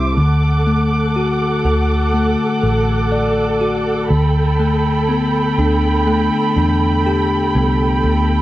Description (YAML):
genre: pop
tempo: 61 BPM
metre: 4/4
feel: straight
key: G major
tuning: A4 = 442 Hz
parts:
  - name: bell-like tine electric piano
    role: accompaniment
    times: 0.0-8.4 s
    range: C3 to D5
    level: -17 LUFS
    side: left 3 dB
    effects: none
  - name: dark studio string section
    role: sustained chords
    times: 0.0-8.4 s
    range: A4 to D6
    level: -19 LUFS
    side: right 2 dB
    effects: none
  - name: vintage muted fingered electric bass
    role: bass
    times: 0.0-8.4 s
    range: A1 to E2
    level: -18 LUFS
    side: right 1 dB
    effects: none
room: little or no reverb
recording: dry, close 1970s-style studio recording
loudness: -14 LUFS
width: side -15 dB against mid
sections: 0.0-8.4 A section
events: none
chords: 0.2 D; 4.1 Gadd9